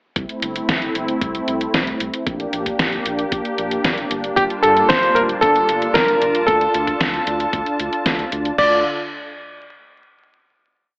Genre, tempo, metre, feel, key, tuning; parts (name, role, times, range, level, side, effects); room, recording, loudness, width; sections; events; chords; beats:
italo disco; 114 BPM; 4/4; straight; D minor; A4 = 438 Hz
warm analog pad; sustained chords; 0.2-8.8 s; D3 to A5; -22 LUFS; equal; chorus
round analog bass; bass; 0.2-8.8 s; D1 to G2; -31 LUFS; equal
detuned 8-bit digital drum machine; drums; 0.2-8.7 s; crash cymbal, hi-hat, snare drum; -21 LUFS; equal; overdrive, gated reverb
electronic kick drum; drums; 0.2-8.7 s; -27 LUFS; equal
warm electric grand piano; melody; 4.4-8.8 s; G4 to D5; -16 LUFS; equal; tape echo
moderate plate reverb, RT60 1.2 s; vinyl crackle, AM radio sound; -16 LUFS; side -28 dB against mid
0.2-8.6 verse; 8.6-10.7 final chord
0.2 C6; 2.3 Bb6; 4.4 Gm7; 6.5 Dm
| 0.16 0.69 1.22 1.74 | 2.27 2.79 3.32 3.85 | 4.37 4.90 5.42 5.95 | 6.48 7.00 7.53 8.06 | 8.58